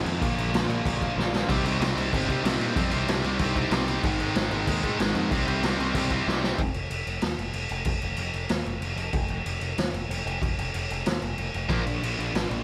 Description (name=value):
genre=punk rock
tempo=188 BPM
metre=4/4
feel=straight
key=C minor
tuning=A4 = 440 Hz
part: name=distorted electric guitar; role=riff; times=0.0-6.6, 11.7-11.8 s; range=Ab2 to C4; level=-34 LUFS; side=equal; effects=overdrive
part: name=thick fuzz guitar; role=riff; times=0.0-6.6, 11.7-12.6 s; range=Ab2 to Eb4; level=-34 LUFS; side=equal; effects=distortion
part: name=growling picked electric bass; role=bass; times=0.0-12.6 s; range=F1 to C3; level=-33 LUFS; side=equal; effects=overdrive
part: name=raw garage drum kit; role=drums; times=0.1-12.6 s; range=crash cymbal, kick drum, snare drum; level=-30 LUFS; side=equal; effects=none
part: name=tight distorted guitar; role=riff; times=1.5-6.6, 11.7-11.8 s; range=Ab2 to C4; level=-32 LUFS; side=equal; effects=distortion
room=light reverb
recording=none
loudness=-27 LUFS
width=mono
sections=0.0-6.6 A section; 6.6-12.6 B section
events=drum fill 1.2-1.5, 6.3-6.6; half time 6.6-12.6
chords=0.2 Bb; 1.5 Cm; 4.0 Ab; 5.3 Cm; 6.6 N.C.; 11.7 Bb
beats=| 0.21 0.54 0.85 1.17 | 1.49 1.81 2.13 2.45 | 2.77 3.09 3.41 3.72 | 4.04 4.36 4.68 5.00 | 5.32 5.63 5.95 6.27 | 6.59 6.91 7.23 7.55 | 7.87 8.19 8.50 8.82 | 9.14 9.46 9.78 10.10 | 10.42 10.74 11.06 11.38 | 11.70 12.02 12.34